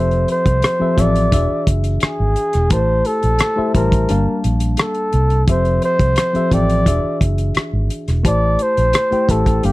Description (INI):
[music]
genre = lush 1970s-style soul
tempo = 87 BPM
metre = 4/4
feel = straight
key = unclear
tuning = A4 = 437 Hz
[part]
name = breathy flugelhorn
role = melody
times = 0.0-9.7 s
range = G4 to D5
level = -18 LUFS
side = equal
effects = none
[part]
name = reed electric piano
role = accompaniment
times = 0.0-9.7 s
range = E3 to A5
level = -21 LUFS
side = left 2 dB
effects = none
[part]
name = vintage muted fingered electric bass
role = bass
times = 0.0-9.7 s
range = E1 to C2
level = -17 LUFS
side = equal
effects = none
[part]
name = cloth-damped thuddy drum kit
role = drums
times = 0.1-9.7 s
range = hi-hat, kick drum, rim click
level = -18 LUFS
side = equal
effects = none
[sound]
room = little or no reverb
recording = dry, close 1970s-style studio recording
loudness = -14 LUFS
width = side -19 dB against mid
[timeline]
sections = 0.0-9.7 A section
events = none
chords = 0.0 Fmaj7; 1.3 E7; 2.7 Am7; 4.1 Gm9; 5.5 Fmaj7; 6.9 E7; 8.2 Am7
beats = 0.63 1.32 2.02 | 2.71 3.40 4.09 4.78 | 5.48 6.17 6.86 7.55 | 8.25 8.94 9.63